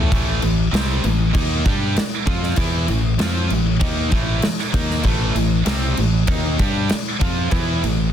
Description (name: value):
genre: hard rock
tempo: 97 BPM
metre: 4/4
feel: straight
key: A minor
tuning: A4 = 441 Hz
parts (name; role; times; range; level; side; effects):
- heavy high-gain guitar; riff; 0.0-8.1 s; A2 to G4; -24 LUFS; right 1 dB; distortion
- high-gain distorted guitar; riff; 0.0-8.1 s; A2 to G4; -24 LUFS; equal; distortion
- modern bright fingered electric bass; bass; 0.0-8.1 s; A1 to G2; -21 LUFS; equal; none
- big rock drum kit; drums; 0.1-8.0 s; crash cymbal, kick drum, snare drum; -21 LUFS; equal; none
room: light reverb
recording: dense, heavily limited modern master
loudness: -17 LUFS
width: side -9 dB against mid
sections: 0.1-8.1 A section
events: none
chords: 0.1 Am